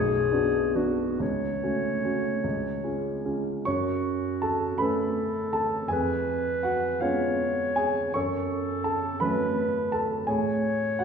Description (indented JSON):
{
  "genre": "classical, romantic duo for clarinet and grand piano",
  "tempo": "45-58 BPM (dotted quarters)",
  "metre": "6/8",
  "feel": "rubato",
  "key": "F# minor",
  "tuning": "A4 = 439 Hz",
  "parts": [
    { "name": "clear clarinet", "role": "melody", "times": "0.0-11.0 s", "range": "F#4 to C#5", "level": "-29 LUFS", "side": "left 2 dB", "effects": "none" },
    { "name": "warm grand piano", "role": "accompaniment", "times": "0.0-11.0 s", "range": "B1 to C#6", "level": "-26 LUFS", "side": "right 1 dB", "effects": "none" }
  ],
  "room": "wet recital hall reverb, RT60 1.5 s",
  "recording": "heard from further back in the room",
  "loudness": "-24 LUFS",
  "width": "side -6 dB against mid",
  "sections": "0.0-3.6 A section; 3.6-11.0 B section",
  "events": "none",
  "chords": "0.0 Bm; 1.2 F#m/C#; 2.4 C#; 3.6 F#m; 5.9 C#7/E#; 8.1 F#m; 10.3 F#m/A (rootless)",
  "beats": "| 1.20 2.44 | 3.65 4.79 | 5.90 7.00 | 8.15 9.21 | 10.28"
}